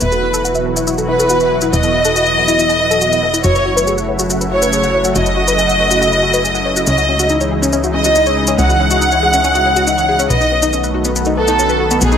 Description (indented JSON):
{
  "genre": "uplifting trance",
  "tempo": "140 BPM",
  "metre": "4/4",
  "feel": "straight",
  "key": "E major",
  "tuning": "A4 = 439 Hz",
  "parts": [
    { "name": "warm studio violin section", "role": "second line", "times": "0.0-12.2 s", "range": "G#4 to F#5", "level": "-14 LUFS", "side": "equal", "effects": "digital delay" },
    { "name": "analog string pad", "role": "sustained chords", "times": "0.0-12.2 s", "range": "B2 to F#4", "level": "-19 LUFS", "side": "equal", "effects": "ensemble chorus" },
    { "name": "analog pluck", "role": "arpeggios", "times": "0.0-12.2 s", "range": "B3 to F#5", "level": "-20 LUFS", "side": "left 3 dB", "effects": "chorus, phaser, digital delay" },
    { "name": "plucky analog bass", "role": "bass", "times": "0.0-12.2 s", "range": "E1 to C#2", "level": "-21 LUFS", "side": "equal", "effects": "none" },
    { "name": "maracas", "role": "percussion", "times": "0.0-12.2 s", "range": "none", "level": "-21 LUFS", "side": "left 1 dB", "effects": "none" }
  ],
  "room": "moderate digital room reverb, RT60 1.2 s",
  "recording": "none",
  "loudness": "-11 LUFS",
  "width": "side -8 dB against mid",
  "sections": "0.0-12.2 A section",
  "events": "filter sweep on synth arpeggio sound 0.0-12.2",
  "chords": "0.0 Esus2; 3.4 F#m7; 6.9 C#madd9; 10.3 B7"
}